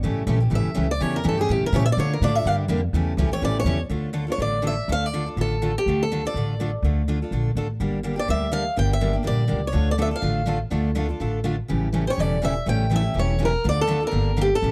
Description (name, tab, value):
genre	acoustic string swing (jazz manouche)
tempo	247 BPM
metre	4/4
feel	swing 55% on 8ths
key	D harmonic minor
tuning	A4 = 441 Hz
part	picked steel-string acoustic guitar	accompaniment	0.0-14.7 s	C#3 to A4	-30 LUFS	equal	none
part	picked steel-string acoustic guitar	accompaniment	0.0-3.8, 9.7-14.7 s	D3 to A4	-31 LUFS	equal	none
part	upright bass	bass	0.0-14.7 s	E1 to D3	-26 LUFS	equal	none
part	picked swing-style acoustic guitar	melody	0.6-14.7 s	G4 to G5	-28 LUFS	equal	none
room	small room ambience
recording	dry, close 1970s-style studio recording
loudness	-23 LUFS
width	mono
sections	0.0-3.9 A section; 3.9-14.7 B section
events	steel-string acoustic guitar solo 0.0-3.9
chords	0.0 A7b9; 2.0 Dm; 2.5 Gm; 2.9 A7; 3.9 Dm; 7.8 Gm; 9.7 Dm; 11.7 A7; 13.6 Dm; 14.1 Gm